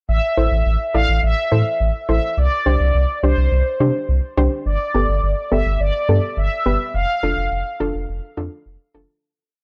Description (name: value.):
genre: synth-pop.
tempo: 105 BPM.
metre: 4/4.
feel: straight.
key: unclear.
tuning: A4 = 440 Hz.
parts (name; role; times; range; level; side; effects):
mellow synth brass; melody; 0.1-8.0 s; C5 to F5; -24 LUFS; equal; chorus, phaser, tape echo.
round analog bass; bass; 0.1-9.1 s; F1 to C3; -20 LUFS; equal; none.
soft round pluck; accompaniment; 0.4-9.2 s; B3 to D5; -25 LUFS; equal; chorus.
room: little or no reverb.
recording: dry, gritty hardware recording, lossy compression artefacts.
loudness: -19 LUFS.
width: mono.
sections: 0.1-9.2 verse.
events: fade-out 6.9-9.2.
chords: 0.1 Am; 2.4 Csus2; 4.7 Gadd9; 6.9 Dm/F.